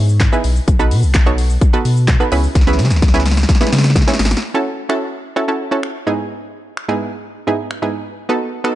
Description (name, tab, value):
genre	dance-pop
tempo	128 BPM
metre	4/4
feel	straight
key	F# dorian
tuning	A4 = 440 Hz
part	analog pluck	accompaniment	0.0-8.8 s	G#2 to C#5	-19 LUFS	right 2 dB	chorus, sidechain pumping
part	warm sub bass	bass	0.0-4.3 s	G#1 to C#3	-14 LUFS	equal	sidechain pumping
part	house drum kit	drums	0.1-8.8 s	finger snaps, handclaps, hi-hat, kick drum, shaker, snare drum	-16 LUFS	equal	none
room	digital ambience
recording	dark, warm production, nothing above 10.4 kHz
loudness	-13 LUFS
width	side -14 dB against mid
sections	0.0-4.4 A section; 4.4-8.8 B section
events	drop 0.0-4.4; drum fill 2.6-4.4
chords	0.0 Emaj7/G#; 0.7 B7; 2.3 C#m7; 4.4 F#m7; 6.1 Emaj7/G#; 8.2 B7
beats	0.21 | 0.68 1.15 1.61 2.08 | 2.55 3.02 3.49 3.96 | 4.43 4.90 5.37 5.83 | 6.30 6.77 7.24 7.71 | 8.18 8.65